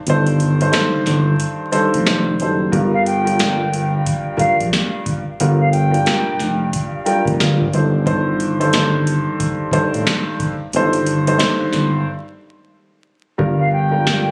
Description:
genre	hip hop, boom-bap hip-hop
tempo	90 BPM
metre	4/4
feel	swing 62% on 16ths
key	G minor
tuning	A4 = 441 Hz
part	dark upright piano	accompaniment	0.1-14.3 s	G2 to C5	-21 LUFS	equal	cassette tape, high-pass filter, low-pass filter
part	smooth gliding synth bass	bass	0.1-14.3 s	F1 to Bb1	-21 LUFS	equal	none
part	booming analog drum machine	drums	0.1-14.3 s	hi-hat, kick drum, snare drum	-23 LUFS	equal	none
part	mellow hollow silver concert flute	melody	2.9-7.2, 13.6-14.3 s	F5 to G5	-23 LUFS	equal	high-pass filter, low-pass filter, delay
room	little or no reverb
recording	recorded on a phone in the room, club reverb, vinyl crackle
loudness	-17 LUFS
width	mono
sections	0.0-13.4 A section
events	break 0.1-2.7, 12.1-13.4; hi-hats muted 13.4-14.3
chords	0.0 F7/G; 2.7 Gm7; 7.7 Am7b5/G; 13.4 Gm7

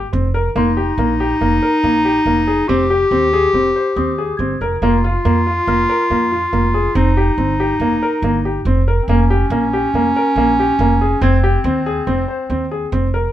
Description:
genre	contemporary instrumental, chamber music in an uneven meter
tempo	141 BPM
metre	5/4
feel	straight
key	unclear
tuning	A4 = 440 Hz
part	warm clarinet	second line	0.0-13.1 s	C4 to G4	-17 LUFS	left 1 dB	none
part	warm baby grand piano	arpeggios	0.0-13.3 s	Bb3 to C5	-18 LUFS	left 1 dB	none
part	upright bass	bass	0.0-13.3 s	F1 to F2	-19 LUFS	right 1 dB	none
part	celesta	texture	0.6-7.1, 11.2-12.9 s	C6 to Ab6	-30 LUFS	left 4 dB	none
room	light reverb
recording	close, detailed microphones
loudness	-14 LUFS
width	side -12 dB against mid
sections	0.0-13.3 A section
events	none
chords	0.0 C5/F; 0.6 Eb/F; 2.7 Ab/F; 4.8 Bb5/F; 6.9 Cm7/F; 9.1 Bbm6/F; 11.2 Ab/F

